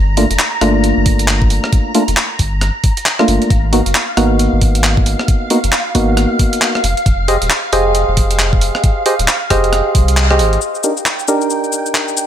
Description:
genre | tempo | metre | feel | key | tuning
UK garage, two-step garage | 135 BPM | 4/4 | swing 61% on 16ths | unclear | A4 = 439 Hz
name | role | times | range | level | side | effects
soft string machine | sustained chords | 0.0-12.3 s | F5 to Bb5 | -22 LUFS | equal | phaser, ensemble chorus, vintage 12-bit sampler grit, sidechain pumping
saturated sub bass | bass | 0.0-10.6 s | Eb1 to C2 | -16 LUFS | equal | sidechain pumping
percussive organ stab | stabs | 0.2-12.3 s | A3 to Eb5 | -16 LUFS | equal | chorus, ping-pong delay
breakbeat sampler-style drum kit | drums | 0.2-12.3 s | handclaps, hi-hat, rim click, shaker | -17 LUFS | equal | none
electronic kick drum | drums | 1.1-10.1 s | none | -14 LUFS | equal | none
room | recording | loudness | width
light reverb | none | -11 LUFS | side -10 dB against mid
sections
0.0-10.6 A section; 10.6-12.3 B section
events
kick drops out 10.2-10.6; band accent 10.2; filter sweep on synth stab 10.6-12.3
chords
0.0 Gm7; 3.5 Abm7; 6.8 Fm7; 10.6 Ebmaj7/D

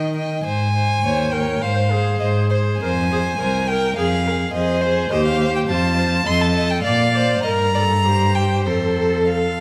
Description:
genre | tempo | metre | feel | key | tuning
quick classical-period movement for string quartet | 96-105 BPM | 2/4 | rubato | Ab major | A4 = 440 Hz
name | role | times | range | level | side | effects
rich violin | melody | 0.0-9.6 s | C5 to C6 | -25 LUFS | equal | none
rich violin | second line | 0.0-9.6 s | Ab4 to Eb5 | -27 LUFS | equal | none
clear cello | bass | 0.0-9.6 s | C2 to Eb3 | -23 LUFS | equal | none
rich viola | accompaniment | 1.0-9.6 s | F4 to D5 | -26 LUFS | equal | none
room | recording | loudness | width
moderate concert hall reverb, RT60 2.3 s | none | -19 LUFS | mono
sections
0.4-9.6 A section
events
none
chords
0.4 Ab; 1.0 Eb7; 1.6 Ab; 2.8 Fm; 3.4 C5; 4.0 Fm; 5.1 Cm/Eb; 5.7 F; 6.3 F7; 6.8 Bb; 7.4 Eb/G (rootless); 8.0 C5/G; 8.7 F

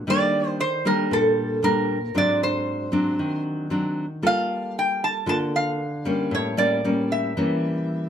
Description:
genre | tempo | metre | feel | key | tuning
bossa nova | 115 BPM | 4/4 | straight | unclear | A4 = 442 Hz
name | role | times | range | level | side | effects
nylon-string guitar | accompaniment | 0.0-8.1 s | G#2 to A4 | -24 LUFS | left 1 dB | none
metal-body resonator slide guitar | melody | 0.1-8.1 s | A4 to A5 | -23 LUFS | right 1 dB | none
room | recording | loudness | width
moderate studio reverb, RT60 0.8 s | lossy compression artefacts | -21 LUFS | side -8 dB against mid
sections
0.0-8.1 A section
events
none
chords
0.1 Ebmaj7; 2.2 G#7#11; 4.2 Gm9; 6.3 A7b9

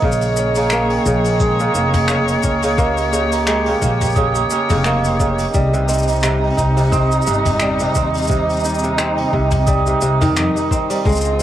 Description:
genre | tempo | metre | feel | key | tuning
folktronica | 87 BPM | 4/4 | swing 56% on 16ths | unclear | A4 = 445 Hz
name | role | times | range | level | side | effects
vibraphone with medium mallets | second line | 0.0-11.4 s | Eb4 to Eb6 | -20 LUFS | right 8 dB | vintage 12-bit sampler grit, cassette tape, tape echo, plate reverb
warm string quartet | sustained chords | 0.0-11.4 s | C3 to Db5 | -22 LUFS | left 2 dB | cassette tape, plate reverb
kora | arpeggios | 0.0-11.4 s | C3 to G4 | -21 LUFS | left 1 dB | cassette tape, tape echo, plate reverb
upright bass | bass | 0.0-11.4 s | F1 to F2 | -20 LUFS | left 1 dB | none
electronic kick drum | drums | 0.0-11.2 s | none | -20 LUFS | left 1 dB | cassette tape
soft brush drum kit | drums | 0.1-11.4 s | finger snaps, hi-hat, shaker, toms | -24 LUFS | left 2 dB | cassette tape
room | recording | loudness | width
light reverb | home recording on cassette | -14 LUFS | side -12 dB against mid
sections
0.0-11.4 A section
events
none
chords
0.0 Bbm7; 5.5 Cm

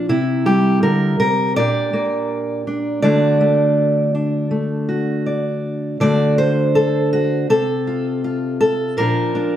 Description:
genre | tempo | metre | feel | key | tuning
folk, solo fingerstyle acoustic guitar | 81 BPM | 4/4 | straight | unclear | A4 = 440 Hz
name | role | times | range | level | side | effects
fingerpicked steel-string acoustic guitar | solo | 0.0-9.6 s | Bb2 to D5 | -16 LUFS | equal | slapback echo
room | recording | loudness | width
moderate large studio reverb, RT60 1.2 s | dark, warm production | -15 LUFS | side -11 dB against mid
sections
0.0-6.0 A section; 6.0-9.6 B section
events
none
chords
0.1 C; 1.6 Gm/Bb; 3.0 D; 7.5 F/C; 9.0 Bb

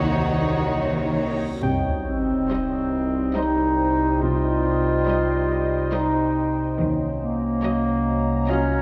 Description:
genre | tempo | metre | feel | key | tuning
cinematic, suspense film score | 70 BPM | 3/4 | straight | C phrygian | A4 = 440 Hz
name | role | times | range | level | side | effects
rich studio violin section | melody | 0.0-8.8 s | Db5 to Eb5 | -40 LUFS | equal | none
rich studio violin section | second line | 0.0-8.8 s | Gb4 to Db5 | -37 LUFS | equal | none
warm studio viola section | accompaniment | 0.0-8.8 s | Gb3 to Eb4 | -36 LUFS | equal | none
deep dark ambient pad | sustained chords | 0.0-8.8 s | Gb4 to Bb5 | -32 LUFS | equal | chorus, built-in reverb
rich studio double bass section | bass | 0.0-7.5 s | C2 to Eb2 | -31 LUFS | equal | none
warm studio cello section | bass | 0.0-7.5 s | C3 to Eb3 | -30 LUFS | equal | none
analog drone | drone | 0.0-8.8 s | C2 | -29 LUFS | equal | chorus
reverse cymbal and sub drop | sound effects | 1.6-4.2 s | none | -34 LUFS | equal | none
concert harp | texture | 0.0-8.8 s | F4 to G5 | -36 LUFS | equal | none
mellow French horn section | sustained chords | 1.6-8.8 s | Gb3 to Eb4 | -32 LUFS | equal | none
warm clarinet | second line | 2.1-8.8 s | Bb3 to F4 | -25 LUFS | equal | none
room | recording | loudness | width
wet scoring stage reverb, RT60 1.9 s | none | -22 LUFS | mono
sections
0.0-1.6 A section; 1.6-8.8 B section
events
reverse cymbal 1.4; impact 1.6-4.2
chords
0.0 Ebm7; 1.6 Cm; 6.8 Ebm7

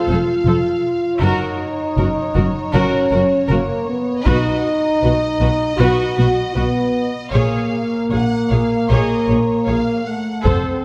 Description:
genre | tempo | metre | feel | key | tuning
cinematic, epic orchestral film score | 78 BPM | 4/4 | straight | Bb phrygian | A4 = 436 Hz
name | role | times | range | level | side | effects
warm symphonic violin section | melody | 0.0-10.4 s | Db5 to Gb5 | -32 LUFS | equal | none
dark studio violin section | second line | 0.0-10.8 s | Bb4 to Db5 | -30 LUFS | equal | none
rich symphonic viola section | accompaniment | 0.0-10.8 s | Gb4 to A4 | -28 LUFS | equal | none
dark French horn section | sustained chords | 0.0-10.8 s | A3 to F#4 | -21 LUFS | equal | none
dark symphonic cello section | bass | 0.1-10.5 s | F2 to B2 | -25 LUFS | equal | none
warm symphonic double bass section | bass | 0.1-10.5 s | F1 to B1 | -24 LUFS | equal | none
taiko ensemble | drums | 4.3-5.7, 10.5-10.8 s | none | -23 LUFS | equal | none
room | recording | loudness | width
wet scoring stage reverb, RT60 1.9 s | none | -18 LUFS | mono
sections
0.0-10.8 A section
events
none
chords
0.0 F; 1.2 Gb; 4.3 B; 7.3 Bbm7

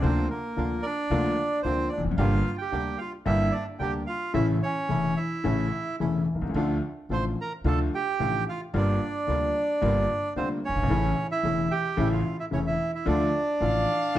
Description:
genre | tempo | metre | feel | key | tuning
tango | 111 BPM | 4/4 | rubato | D minor | A4 = 440 Hz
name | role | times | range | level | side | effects
bandoneon | melody | 0.0-14.2 s | Bb3 to C6 | -28 LUFS | right 2 dB | none
clear baby grand piano | accompaniment | 0.0-14.2 s | E1 to G4 | -28 LUFS | left 3 dB | none
bandoneon | stabs | 0.0-14.2 s | G3 to G4 | -39 LUFS | right 3 dB | none
upright bass | bass | 0.0-14.2 s | E1 to D2 | -29 LUFS | right 1 dB | none
warm violin | second line | 13.6-14.2 s | F5 | -30 LUFS | left 2 dB | none
room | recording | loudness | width
wet large studio reverb, RT60 1.1 s | dark, warm production | -24 LUFS | side -13 dB against mid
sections
0.0-14.2 A section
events
none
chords
0.0 Bb/D; 2.2 Gm; 4.3 A; 6.6 Dm; 8.7 Gm7; 10.9 A; 13.1 Dm

